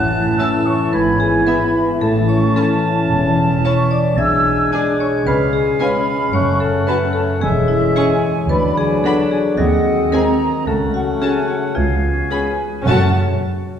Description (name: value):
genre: cinematic, playful, whimsical film cue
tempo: 111 BPM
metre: 4/4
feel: straight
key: F# minor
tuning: A4 = 442 Hz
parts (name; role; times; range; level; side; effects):
- marimba with hard mallets; melody; 0.0-13.2 s; E4 to F#5; -22 LUFS; left 3 dB; none
- clear oboe; second line; 0.0-13.1 s; D5 to A5; -24 LUFS; equal; none
- hollow flute section; second line; 0.0-13.2 s; E5 to F#6; -23 LUFS; right 1 dB; none
- warm clarinet; second line; 0.0-13.1 s; B#3 to E4; -25 LUFS; left 2 dB; none
- mellow bassoon; accompaniment; 0.0-13.1 s; E3 to B3; -24 LUFS; equal; none
- mellow French horn section; sustained chords; 0.0-13.1 s; F#3 to E4; -24 LUFS; left 1 dB; none
- concert harp; arpeggios; 0.0-13.2 s; F#2 to E5; -24 LUFS; left 3 dB; none
- dark chamber double bass section; bass; 0.0-13.2 s; E1 to D#2; -22 LUFS; right 2 dB; none
- dark studio cello section; bass; 0.0-13.2 s; C#2 to C#3; -24 LUFS; right 1 dB; none
- warm chamber violin section; melody; 0.4-13.2 s; E5 to C#6; -31 LUFS; left 2 dB; none
- dark chamber violin section; second line; 0.4-13.2 s; E4 to G#4; -29 LUFS; left 3 dB; none
- warm studio viola section; accompaniment; 0.4-13.2 s; B3 to D4; -27 LUFS; right 3 dB; none
room: wet scoring stage reverb, RT60 1.8 s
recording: heard from further back in the room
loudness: -14 LUFS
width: side -8 dB against mid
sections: 0.0-12.9 A section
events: none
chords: 0.0 A; 0.9 E/G#; 2.0 A; 4.2 G#dim/B; 5.3 C#7; 6.3 F#m; 7.4 C#m/E; 8.5 Bm/D; 9.6 G#7/D#; 10.7 F#m/C#; 11.8 C#7; 12.9 F#m